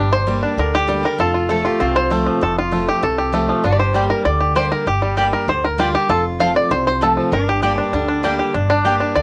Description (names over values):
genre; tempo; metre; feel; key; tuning
bluegrass; 196 BPM; 4/4; straight; G minor; A4 = 441 Hz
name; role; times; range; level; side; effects
bluegrass banjo; melody; 0.0-9.2 s; F3 to F5; -20 LUFS; equal; cassette tape
lap resonator guitar; second line; 0.0-8.5 s; D4 to A4; -29 LUFS; equal; cassette tape
picked steel-string acoustic guitar; accompaniment; 0.0-9.2 s; F2 to G4; -26 LUFS; equal; cassette tape
upright bass; bass; 0.0-9.2 s; F1 to D2; -26 LUFS; equal; none
mandolin; stabs; 3.9-8.9 s; Bb3 to A5; -22 LUFS; equal; cassette tape
room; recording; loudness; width
moderate booth ambience, RT60 0.2 s; home recording on cassette, lossy compression artefacts; -18 LUFS; mono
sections
0.0-8.5 A section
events
five-string banjo solo 0.0-9.2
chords
0.0 Gm; 1.2 F; 3.6 Gm; 6.1 F; 7.3 Gm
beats
0.27 0.58 0.89 | 1.19 1.50 1.81 2.11 | 2.42 2.73 3.03 3.34 | 3.64 3.95 4.26 4.56 | 4.87 5.17 5.48 5.79 | 6.09 6.40 6.71 7.01 | 7.32 7.62 7.93 8.24 | 8.54 8.85 9.16